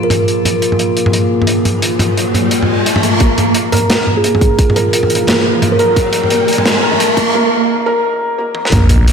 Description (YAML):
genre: half-time drum and bass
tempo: 174 BPM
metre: 4/4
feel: swing 60% on 16ths, half-time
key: unclear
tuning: A4 = 440 Hz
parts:
  - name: kalimba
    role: melody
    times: 0.0-0.3, 4.2-5.9 s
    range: Ab4 to Bb4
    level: -18 LUFS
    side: right 1 dB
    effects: low-pass filter, ping-pong delay
  - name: deep dark ambient pad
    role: sustained chords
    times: 0.0-9.1 s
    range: Bb3 to F5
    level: -20 LUFS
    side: left 2 dB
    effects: chorus, built-in reverb, sidechain pumping
  - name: metallic inharmonic drone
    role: texture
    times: 0.0-3.2 s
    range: F3 to Ab4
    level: -25 LUFS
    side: right 2 dB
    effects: chorus, built-in reverb
  - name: crunchy breakbeat drum kit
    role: drums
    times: 0.1-9.1 s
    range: hi-hat, snare drum, toms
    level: -15 LUFS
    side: equal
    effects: none
  - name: riser and sub drop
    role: sound effects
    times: 1.3-9.1 s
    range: none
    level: -17 LUFS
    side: right 1 dB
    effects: none
  - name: felt-muted upright piano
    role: arpeggios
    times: 3.2-9.1 s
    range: Bb3 to Bb4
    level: -17 LUFS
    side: equal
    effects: low-pass filter, ping-pong delay
  - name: electronic kick drum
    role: drums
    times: 3.2-8.8 s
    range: none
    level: -13 LUFS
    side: equal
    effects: none
  - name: phased detuned saw bass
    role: bass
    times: 8.7-9.1 s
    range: Bb1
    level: -11 LUFS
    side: equal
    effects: phaser
room: wet lush hall reverb, RT60 1.9 s, small room ambience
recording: dreamy mix soaked in reverb, high-pass filter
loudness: -10 LUFS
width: side -6 dB against mid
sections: 0.0-3.2 A section; 3.2-8.7 B section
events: riser 1.3-3.2, 3.2-7.3; build-up 3.2-8.7; filter sweep on ambient pad 3.2-8.7; filter sweep on felt piano 3.2-8.7; filter sweep on kalimba 3.2-8.7; break 7.3-8.7; drum fill 8.6; impact 8.7-9.1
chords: 0.0 Bb5